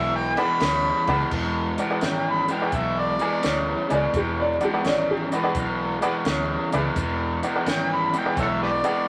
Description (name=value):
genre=electric blues shuffle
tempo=85 BPM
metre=4/4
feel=swing 67% on 8ths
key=E mixolydian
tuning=A4 = 444 Hz
part: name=overdriven harmonica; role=melody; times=0.0-9.1 s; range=G4 to B5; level=-27 LUFS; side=equal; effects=none
part: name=raw garage guitar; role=riff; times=0.0-9.1 s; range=E2 to C#3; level=-28 LUFS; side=equal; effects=overdrive
part: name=vintage muted fingered electric bass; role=bass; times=0.0-8.8 s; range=E1 to D2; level=-34 LUFS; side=equal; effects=none
part: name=honky-tonk upright piano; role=accompaniment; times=0.4-9.0 s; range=G#4 to G#5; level=-30 LUFS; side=equal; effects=none
part: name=compact cocktail drum kit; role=drums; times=0.4-8.9 s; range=crash cymbal, hi-hat, kick drum, ride cymbal, snare drum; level=-33 LUFS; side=equal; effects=none
part: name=clear upright piano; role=second line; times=3.9-6.0 s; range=G4 to D5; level=-27 LUFS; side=equal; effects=none
room=moderate studio reverb, RT60 0.6 s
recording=vinyl crackle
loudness=-24 LUFS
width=mono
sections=0.0-1.3 A section; 1.3-9.1 B section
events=harmonica solo 0.0-1.3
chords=0.0 E7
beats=0.61 | 1.31 2.02 2.73 3.43 | 4.14 4.84 5.55 6.25 | 6.96 7.66 8.37 9.07